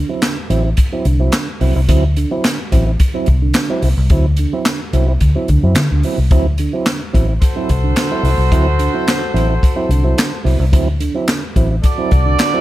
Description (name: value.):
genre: funk.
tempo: 109 BPM.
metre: 4/4.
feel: straight.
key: D mixolydian.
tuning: A4 = 438 Hz.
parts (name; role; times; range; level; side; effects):
mellow tonewheel organ; stabs; 0.0-12.6 s; D3 to E4; -20 LUFS; right 4 dB; chorus vibrato, slow rotary speaker.
swinging big-band drum kit; drums; 0.2-12.5 s; handclaps, hi-hat, kick drum, snare drum; -17 LUFS; equal; none.
vintage muted fingered electric bass; bass; 0.5-12.3 s; A1 to D3; -14 LUFS; equal; none.
mellow horn section; second line; 7.4-12.6 s; F#4 to D5; -20 LUFS; equal; none.
room: little or no reverb.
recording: none.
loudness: -13 LUFS.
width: side -15 dB against mid.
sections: 0.0-12.6 A section.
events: none.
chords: 0.0 D9.